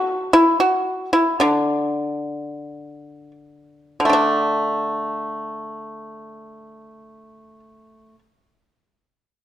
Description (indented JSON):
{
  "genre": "chinese traditional, Chinese solo plucked strings",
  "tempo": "37-60 BPM",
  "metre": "2/4",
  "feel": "rubato",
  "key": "D gong mode",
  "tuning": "A4 = 440 Hz",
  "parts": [
    { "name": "pipa", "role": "solo", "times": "0.0-8.2 s", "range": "D3 to F#4", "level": "-18 LUFS", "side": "equal", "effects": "none" }
  ],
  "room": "moderate recital hall reverb, RT60 1.4 s",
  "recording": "dark, warm production",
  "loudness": "-17 LUFS",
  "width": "side -11 dB against mid",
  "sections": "0.0-4.1 A section; 4.1-9.4 B section",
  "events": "slowing down 0.0-4.1",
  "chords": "none"
}